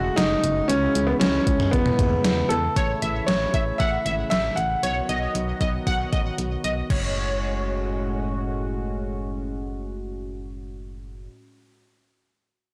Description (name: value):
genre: synth-pop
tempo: 116 BPM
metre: 4/4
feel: straight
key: F# dorian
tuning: A4 = 440 Hz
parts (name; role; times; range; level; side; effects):
- clear grand piano; melody; 0.0-6.3 s; B3 to F#5; -26 LUFS; equal; digital delay
- warm analog pad; sustained chords; 0.0-11.3 s; A2 to F#4; -33 LUFS; equal; chorus
- solid FM bass; bass; 0.0-11.3 s; F#1 to E2; -31 LUFS; equal; tube saturation
- gated 80s digital drum machine; drums; 0.2-7.0 s; cowbell, crash cymbal, hi-hat, kick drum, snare drum, toms; -27 LUFS; equal; gated reverb, gated reverb snare, overdrive
- funky polysynth comp; second line; 2.8-8.4 s; C#5 to F#5; -31 LUFS; equal; chorus, digital delay
room: light reverb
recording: blown-out, overdriven recording, overdrive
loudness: -24 LUFS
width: mono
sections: 0.0-2.8 A section; 2.8-6.9 B section; 6.9-11.0 C section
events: none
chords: 0.0 F#madd9; 0.7 C#m; 1.7 E6; 2.8 A; 4.8 B; 6.9 F#madd9